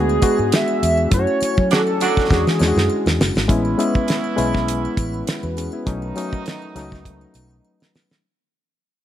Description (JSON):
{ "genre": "lush 1970s-style soul", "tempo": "101 BPM", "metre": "4/4", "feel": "swing 54% on 16ths", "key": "A major", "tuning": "A4 = 441 Hz", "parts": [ { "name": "hollow square lead", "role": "melody", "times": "0.0-3.2 s", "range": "G#4 to E5", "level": "-21 LUFS", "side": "right 2 dB", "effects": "chorus" }, { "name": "reed electric piano", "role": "accompaniment", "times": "0.0-8.3 s", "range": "F#3 to B4", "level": "-23 LUFS", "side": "left 3 dB", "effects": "none" }, { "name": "clear French horn section", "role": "sustained chords", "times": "0.0-8.2 s", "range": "D3 to B4", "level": "-31 LUFS", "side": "right 1 dB", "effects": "none" }, { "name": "vintage muted fingered electric bass", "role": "bass", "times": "0.0-7.6 s", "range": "F#1 to F#3", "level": "-23 LUFS", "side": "equal", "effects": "none" }, { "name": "triangle", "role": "percussion", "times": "0.1-8.2 s", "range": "none", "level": "-37 LUFS", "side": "left 9 dB", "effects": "none" }, { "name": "damped 70s drum kit", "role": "drums", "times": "0.2-8.2 s", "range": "hi-hat, kick drum, snare drum", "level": "-20 LUFS", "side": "right 1 dB", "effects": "none" }, { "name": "warm horn section", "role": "stabs", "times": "1.7-7.9 s", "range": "D#3 to F#4", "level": "-26 LUFS", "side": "right 5 dB", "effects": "none" } ], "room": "light reverb, small room ambience", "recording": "none", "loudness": "-16 LUFS", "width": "side -11 dB against mid", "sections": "0.0-3.5 A section; 3.5-8.2 B section", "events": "band accent 1.1-3.5; drum fill 2.3-3.5, 7.6-8.2; fade-out 3.5-8.2", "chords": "0.0 E9; 1.1 Dmaj7/F#; 2.3 E13; 3.5 Amaj9; 5.9 B9" }